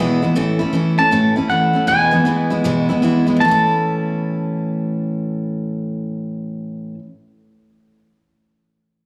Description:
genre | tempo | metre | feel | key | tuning
rock | 158 BPM | 4/4 | swing 64% on 8ths | A major | A4 = 439 Hz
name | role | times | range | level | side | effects
picked steel-string acoustic guitar | accompaniment | 0.0-7.1 s | E2 to E4 | -20 LUFS | equal | none
twangy electric guitar | melody | 1.0-6.9 s | F#5 to A5 | -20 LUFS | equal | slapback echo, tape echo
room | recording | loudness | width
light reverb, studio ambience | live gig heard through the venue's PA, club reverb | -18 LUFS | mono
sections
0.4-3.4 A section; 3.4-6.5 B section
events
none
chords
0.4 A; 1.9 E; 3.4 A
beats
| 0.37 0.75 1.13 1.51 | 1.89 2.27 2.65 3.03 | 3.41 3.79 4.17 4.55 | 4.93 5.32 5.70 6.08

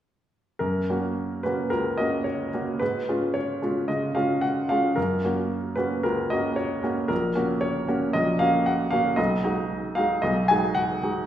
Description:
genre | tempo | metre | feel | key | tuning
classical, romantic character piece for solo piano | 112 BPM | 4/4 | rubato | F# major | A4 = 444 Hz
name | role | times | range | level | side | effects
bright upright piano | solo | 0.6-11.3 s | A#1 to G#5 | -22 LUFS | equal | none
room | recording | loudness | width
wet recital hall reverb, RT60 1.4 s | heard from further back in the room | -22 LUFS | side -11 dB against mid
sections
0.6-11.3 A section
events
none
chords
0.6 F#; 2.8 C#7/G#; 5.0 F#; 7.1 F#/A#; 9.2 G#m7/B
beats
| 0.61 1.17 1.72 2.26 | 2.80 3.35 3.89 4.43 | 4.97 5.50 6.04 6.57 | 7.11 7.63 8.15 8.68 | 9.18 9.70 10.23 10.76

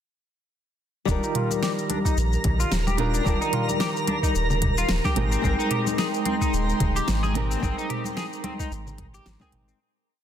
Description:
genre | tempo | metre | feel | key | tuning
sunset chillout | 110 BPM | 4/4 | swing 56% on 16ths | Eb major | A4 = 440 Hz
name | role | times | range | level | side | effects
flamenco guitar | accompaniment | 1.1-9.8 s | Eb3 to G5 | -28 LUFS | left 1 dB | auto-pan, tape echo
clean electric guitar | arpeggios | 1.1-9.8 s | C4 to Ab4 | -31 LUFS | left 2 dB | analog chorus, low-pass filter, tape echo
warm sub bass | bass | 1.1-9.7 s | Eb1 to Bb1 | -26 LUFS | equal | none
electronic kick drum | drums | 1.1-9.5 s | none | -26 LUFS | equal | none
smooth R&B drum kit | drums | 1.1-9.8 s | hi-hat, shaker, snare drum, toms | -30 LUFS | equal | none
congas | percussion | 1.1-9.5 s | none | -33 LUFS | left 2 dB | none
twinkling granular texture | texture | 1.6-9.8 s | Bb4 to Bb5 | -32 LUFS | right 2 dB | built-in reverb
airy breathy pad | sustained chords | 5.7-9.8 s | Ab3 to C6 | -31 LUFS | right 1 dB | chorus
room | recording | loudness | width
light reverb | dense, heavily limited modern master | -22 LUFS | side -9 dB against mid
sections
1.1-9.8 groove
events
filter sweep on clean electric guitar 1.1-9.8; fade-out 6.9-9.8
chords
1.1 Ebmaj9; 5.2 Abmaj9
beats
| 1.08 1.63 2.17 2.72 | 3.26 3.81 4.35 4.90 | 5.45 5.99 6.54 7.08 | 7.63 8.17 8.72 9.26

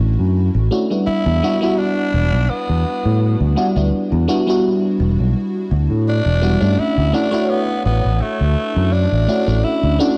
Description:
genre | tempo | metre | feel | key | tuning
vaporwave | 84 BPM | 4/4 | swing 54% on 16ths | unclear | A4 = 438 Hz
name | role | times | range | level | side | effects
FM electric piano with soft pad layer | accompaniment | 0.0-10.1 s | G3 to C#5 | -21 LUFS | equal | phaser, subtle chorus, analog delay
fretless electric bass | bass | 0.0-10.0 s | E1 to A2 | -18 LUFS | equal | lush chorus
growling tenor saxophone | melody | 1.1-10.2 s | A3 to E4 | -24 LUFS | equal | vintage 12-bit sampler grit, tape echo
room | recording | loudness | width
light reverb, studio ambience | dry, gritty hardware recording, cassette tape | -17 LUFS | mono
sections
0.0-10.2 A section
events
none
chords
0.0 Dmaj9; 1.1 Em9; 6.8 Dmaj9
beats
0.35 | 1.07 1.78 2.50 3.21 | 3.93 4.64 5.36 6.07 | 6.78 7.50 8.21 8.93 | 9.64

